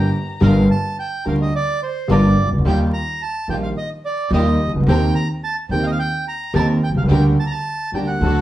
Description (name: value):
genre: tango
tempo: 108 BPM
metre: 4/4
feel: rubato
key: G minor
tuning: A4 = 438 Hz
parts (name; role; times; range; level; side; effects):
- bandoneon; melody; 0.0-8.4 s; C5 to Bb5; -24 LUFS; right 3 dB; none
- warm concert grand piano; accompaniment; 0.0-8.4 s; G1 to G4; -18 LUFS; equal; none
- dark chamber string section; stabs; 0.0-8.4 s; C4 to Bb4; -29 LUFS; equal; none
- upright bass; bass; 0.0-8.4 s; G1 to Eb2; -19 LUFS; equal; none
room: wet club reverb, RT60 0.7 s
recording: heard from further back in the room, vinyl crackle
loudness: -16 LUFS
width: side -14 dB against mid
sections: 0.4-8.4 A section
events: none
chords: 0.4 Gm7; 2.7 Ebadd9; 4.9 Cm7/Eb; 7.1 Gm/D